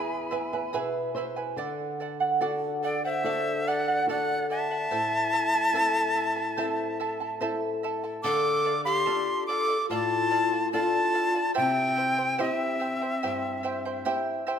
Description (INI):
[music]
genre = andean folk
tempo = 72 BPM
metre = 4/4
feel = straight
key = unclear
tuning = A4 = 441 Hz
[part]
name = bright reedy quena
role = melody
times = 0.0-14.1 s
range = D5 to D6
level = -27 LUFS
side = equal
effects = none
[part]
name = breathy bright pan flute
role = second line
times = 0.0-14.1 s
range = C4 to G#5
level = -32 LUFS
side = left 4 dB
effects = none
[part]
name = charango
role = accompaniment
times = 0.0-14.6 s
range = E4 to A5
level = -31 LUFS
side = right 4 dB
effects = none
[part]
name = flamenco guitar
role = accompaniment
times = 0.0-14.6 s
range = E2 to G#5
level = -33 LUFS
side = left 2 dB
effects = none
[sound]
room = moderate concert hall reverb, RT60 2.4 s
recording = minimal, uncompressed stereo recording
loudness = -24 LUFS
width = side -8 dB against mid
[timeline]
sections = 0.0-8.2 A section; 8.2-14.6 B section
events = nylon-string guitar fill 0.0-1.6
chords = 0.0 E; 1.6 D; 4.9 Am; 8.2 Dm; 11.6 C